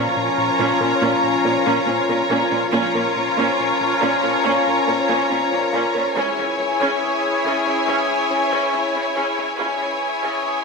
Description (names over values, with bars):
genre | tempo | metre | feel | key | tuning
cinematic, hybrid orchestral and electronic film score | 70 BPM | 4/4 | straight | unclear | A4 = 440 Hz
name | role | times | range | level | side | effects
clear symphonic violin section | second line | 0.0-10.6 s | C#5 to A#5 | -22 LUFS | left 2 dB | none
clear symphonic viola section | accompaniment | 0.0-10.6 s | C#4 to E#4 | -23 LUFS | right 2 dB | none
dark French horn section | sustained chords | 0.0-10.6 s | C#4 to E#4 | -26 LUFS | left 5 dB | none
sweeping resonant pad | sustained chords | 0.0-10.6 s | E3 to C#5 | -24 LUFS | equal | chorus
tight sequenced synth | arpeggios | 0.0-10.4 s | C#3 to A#4 | -32 LUFS | equal | chorus, digital delay
rubbery square bass | riff | 0.0-10.6 s | C#2 to A#2 | -36 LUFS | right 2 dB | none
clear symphonic cello section | bass | 0.0-10.3 s | A#2 to C#3 | -28 LUFS | right 2 dB | none
taiko ensemble | drums | 0.6-1.0, 6.2-10.6 s | none | -40 LUFS | equal | none
warm symphonic double bass section | bass | 2.7-9.8 s | A#1 to C#2 | -40 LUFS | right 3 dB | none
reverse cymbal | sound effects | 9.6-10.6 s | none | barely audible | none | none
room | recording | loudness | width
wet scoring stage reverb, RT60 1.6 s | high-pass filter | -17 LUFS | side -4 dB against mid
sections
0.0-10.6 A section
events
build-up 0.0-10.6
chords
0.0 A#m; 6.2 C#m